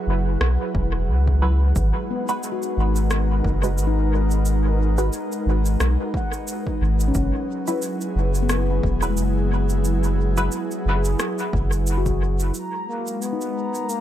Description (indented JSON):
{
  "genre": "ambient dub",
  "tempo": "89 BPM",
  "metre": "4/4",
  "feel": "swing 57% on 16ths",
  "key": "G# minor",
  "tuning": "A4 = 440 Hz",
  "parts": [
    { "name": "airy breathy pad", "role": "sustained chords", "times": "0.0-14.0 s", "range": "F#3 to F#5", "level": "-27 LUFS", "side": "equal", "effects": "chorus, vintage 12-bit sampler grit" },
    { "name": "soft dub sub bass", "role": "bass", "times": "0.1-12.5 s", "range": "E1 to C#2", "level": "-20 LUFS", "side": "equal", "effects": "none" },
    { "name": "electronic rim click and cabasa", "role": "drums", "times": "0.4-14.0 s", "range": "none", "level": "-31 LUFS", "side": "right 1 dB", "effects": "overdrive, dub echo" },
    { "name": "electronic kick drum", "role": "drums", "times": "0.7-12.2 s", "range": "none", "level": "-26 LUFS", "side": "equal", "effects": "none" },
    { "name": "filtered dub chord stab", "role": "stabs", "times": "1.4-10.5 s", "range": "F#3 to B4", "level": "-30 LUFS", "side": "right 1 dB", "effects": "phaser, lush chorus, dub echo" },
    { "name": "handpan", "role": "arpeggios", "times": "2.1-14.0 s", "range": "G#3 to F#5", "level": "-30 LUFS", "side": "left 7 dB", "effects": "low-pass filter, dub echo" },
    { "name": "bubbling stepped-filter texture", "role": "texture", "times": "12.5-14.0 s", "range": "A#5", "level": "-31 LUFS", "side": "left 2 dB", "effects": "chorus, built-in reverb" },
    { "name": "warm trombone", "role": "melody", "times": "12.9-14.0 s", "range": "A#3 to B3", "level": "-27 LUFS", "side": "right 1 dB", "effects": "dub echo" }
  ],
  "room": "digital ambience",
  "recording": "echo-heavy mix",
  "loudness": "-19 LUFS",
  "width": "side -12 dB against mid",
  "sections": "0.0-12.5 A section; 12.5-14.0 B section",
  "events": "none",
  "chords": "0.0 F#7sus4; 1.8 G#m7; 7.2 F#7sus4; 12.5 G#m7",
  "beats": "0.41 1.08 | 1.76 2.43 3.10 3.78 | 4.45 5.13 5.80 6.48 | 7.15 7.82 8.50 9.17 | 9.85 10.52 11.20 11.87 | 12.54 13.22 13.89"
}